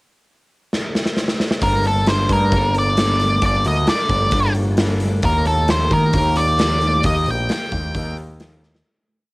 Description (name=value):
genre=quiet-loud alternative rock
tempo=133 BPM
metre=4/4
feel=straight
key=G minor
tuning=A4 = 440 Hz
part: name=big rock drum kit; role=drums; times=0.7-8.9 s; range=hi-hat, kick drum, snare drum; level=-21 LUFS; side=equal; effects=none
part: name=octave-fuzz lead guitar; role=melody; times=1.6-8.2 s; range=A4 to G5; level=-19 LUFS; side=equal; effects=distortion, cassette tape
part: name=picked steel-string acoustic guitar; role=arpeggios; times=1.6-8.9 s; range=G2 to A4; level=-27 LUFS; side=left 3 dB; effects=cassette tape
part: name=growling picked electric bass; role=bass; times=1.6-8.8 s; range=G1 to Eb3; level=-19 LUFS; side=equal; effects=overdrive
room=light reverb, small room ambience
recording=home recording on cassette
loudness=-15 LUFS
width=side -24 dB against mid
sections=0.0-1.6 pickup bar; 1.6-8.9 verse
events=drum fill 0.7-1.6, 8.6; fade-out 7.0-8.9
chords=0.0 N.C.; 1.6 Gmadd9; 5.2 Ebadd9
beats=0.27 0.72 1.17 | 1.62 2.07 2.52 2.98 | 3.43 3.88 4.33 4.78 | 5.24 5.69 6.14 6.59 | 7.05 7.50 7.95 8.40